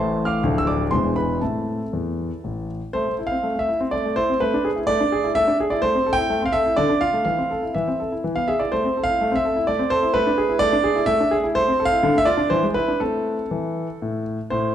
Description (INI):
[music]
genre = classical-period piano sonatina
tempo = 118-128 BPM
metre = 3/4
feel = rubato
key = A minor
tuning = A4 = 440 Hz
[part]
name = warm concert grand piano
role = solo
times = 0.0-14.7 s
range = D1 to F6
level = -19 LUFS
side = equal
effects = none
[sound]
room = wet recital hall reverb, RT60 1.3 s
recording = dark, warm production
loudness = -19 LUFS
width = side -10 dB against mid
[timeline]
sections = 0.0-2.9 A section; 2.9-14.5 A section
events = none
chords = 0.4 Dm; 0.9 E7; 1.4 Am; 4.4 E7/A; 5.8 Am; 6.8 Dm; 7.2 Am/E; 8.2 E; 8.7 Am; 10.2 E7/A; 11.6 Am; 12.0 Dm; 12.5 E7; 13.0 Am